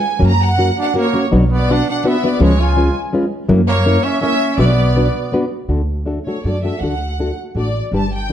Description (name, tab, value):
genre	mexican folk, mariachi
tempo	164 BPM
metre	3/4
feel	straight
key	B harmonic minor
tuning	A4 = 440 Hz
part	clear studio violin section	melody	0.0-8.3 s	C#5 to A#5	-21 LUFS	equal	none
part	nylon-string guitar	accompaniment	0.2-8.3 s	B2 to B4	-18 LUFS	left 2 dB	none
part	upright bass	bass	0.2-8.3 s	G1 to F#2	-17 LUFS	right 1 dB	none
part	mellow trumpet	second line	0.8-5.3 s	G#3 to E#4	-21 LUFS	right 3 dB	none
room	moderate recital hall reverb, RT60 1.4 s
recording	dark, warm production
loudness	-14 LUFS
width	side -10 dB against mid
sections	0.0-5.7 A section; 5.7-8.3 B section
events	none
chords	0.2 F#; 1.3 Bm; 2.4 C#7; 3.5 F#7; 4.6 Bm; 5.7 D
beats	| 0.22 0.58 0.95 | 1.31 1.68 2.05 | 2.41 2.77 3.13 | 3.49 3.86 4.22 | 4.58 4.95 5.32 | 5.69 6.07 6.44 | 6.81 7.19 7.56 | 7.93 8.30